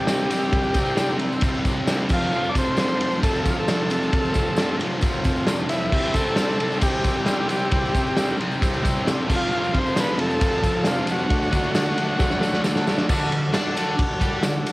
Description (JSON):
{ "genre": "garage rock duo or trio", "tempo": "134 BPM", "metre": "4/4", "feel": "straight", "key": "unclear", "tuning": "A4 = 440 Hz", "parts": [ { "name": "overdriven combo organ", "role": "melody", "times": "0.0-12.6 s", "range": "E4 to D5", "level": "-25 LUFS", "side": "equal", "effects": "cassette tape" }, { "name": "combo organ", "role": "sustained chords", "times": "0.0-14.7 s", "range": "E4 to A5", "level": "-33 LUFS", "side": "equal", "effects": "cassette tape" }, { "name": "fuzz guitar", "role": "riff", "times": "0.0-14.6 s", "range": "F2 to D5", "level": "-25 LUFS", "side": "equal", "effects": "distortion, cassette tape" }, { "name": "raw garage drum kit", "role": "drums", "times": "0.1-14.7 s", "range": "crash cymbal, kick drum, ride cymbal, snare drum", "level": "-22 LUFS", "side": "equal", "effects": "cassette tape" }, { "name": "tambourine", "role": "percussion", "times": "0.1-14.7 s", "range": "none", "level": "-41 LUFS", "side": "left 2 dB", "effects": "none" } ], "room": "light reverb, studio reverb", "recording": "home recording on cassette", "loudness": "-19 LUFS", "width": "side -20 dB against mid", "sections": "0.0-13.1 A section; 13.1-14.7 B section", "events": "drum fill 12.2-13.1; transistor combo organ fill 12.2-13.1", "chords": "0.0 C; 2.1 F; 5.9 C; 9.3 F; 11.3 D" }